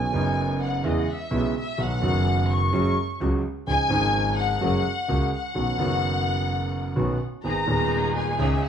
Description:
tango; 127 BPM; 4/4; rubato; B major; A4 = 435 Hz
dark studio violin section; second line; 0.0-8.7 s; D#5 to C#6; -27 LUFS; left 3 dB
warm grand piano; accompaniment; 0.0-8.6 s; D#1 to G#4; -24 LUFS; right 1 dB
clear double bass; bass; 0.0-8.6 s; F#1 to E2; -29 LUFS; equal
muted studio string section; stabs; 7.4-8.6 s; B3 to G#4; -30 LUFS; equal
moderate large studio reverb, RT60 0.9 s; band playing live in one room; -22 LUFS; side -8 dB against mid
0.0-8.7 A section
violin section solo 0.0-8.7
0.0 Badd9; 0.9 E6; 1.8 B; 2.7 F#sus2; 3.7 C#add9; 4.6 F#add9; 5.6 Badd9; 7.4 G#m

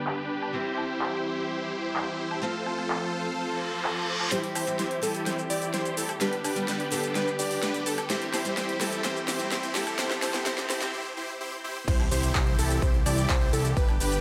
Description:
EDM, festival progressive house; 127 BPM; 4/4; straight; C major; A4 = 439 Hz
picked steel-string acoustic guitar; accompaniment; 0.0-10.9 s; G3 to A4; -37 LUFS; equal; sidechain pumping, delay
muted chamber string section; sustained chords; 0.0-14.2 s; D3 to A4; -40 LUFS; equal; sidechain pumping
dense compressed supersaw; riff; 0.0-14.2 s; D4 to D5; -34 LUFS; equal; sidechain pumping, low-pass filter, delay
big-room dance drum kit; drums; 0.1-14.2 s; cabasa, crash cymbal, handclaps, hi-hat, snare drum, woodblock; -35 LUFS; equal; low-pass filter on perc, low-pass filter on snare, low-pass filter on hats, low-pass filter on cymbals, low-pass filter on room
reverse cymbal, riser, swell and impact; sound effects; 3.6-13.8 s; -40 LUFS; equal
plucky unison lead; arpeggios; 4.3-14.2 s; A4 to D5; -36 LUFS; equal; sidechain pumping, delay
fat analog bass; bass; 11.9-14.2 s; G1 to C2; -30 LUFS; equal; sidechain pumping
electronic kick drum; drums; 11.9-13.9 s; -28 LUFS; equal
moderate lush hall reverb, RT60 2.1 s; high-pass filter, low-pass filter; -28 LUFS; mono
0.0-4.3 A section; 4.3-11.9 B section; 11.9-14.2 C section
filter sweep 0.0-4.3; reverse cymbal 3.6-4.3; build-up 4.3-11.9; drum fill 4.3-10.9; filter sweep on supersaw synth 4.3-11.9; filter sweep on digital synth lead 4.3-11.9; break 10.9-11.9; swell 10.9-11.9; drop 11.9-14.2; impact 11.9-13.8
0.0 G; 0.5 C; 2.4 F; 4.3 C; 6.2 G; 8.1 C; 10.0 F; 11.9 C

